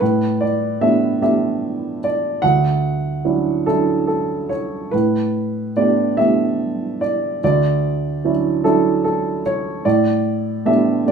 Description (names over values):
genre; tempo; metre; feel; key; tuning
classical, lyrical solo piano; 49 BPM (dotted quarters); 6/8; rubato; D major; A4 = 438 Hz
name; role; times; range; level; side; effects
dark baby grand piano; solo; 0.0-11.1 s; D2 to F#5; -16 LUFS; right 2 dB; none
room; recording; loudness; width
moderate studio reverb, RT60 0.7 s; studio reverb; -16 LUFS; side -6 dB against mid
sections
0.0-11.1 A section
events
none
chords
0.0 A9sus4; 2.4 Dmaj9; 4.9 A9sus4; 7.4 Dmaj9; 9.8 A9sus4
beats
| 0.01 1.22 | 2.42 3.67 | 4.93 6.18 | 7.42 8.64 | 9.84 11.06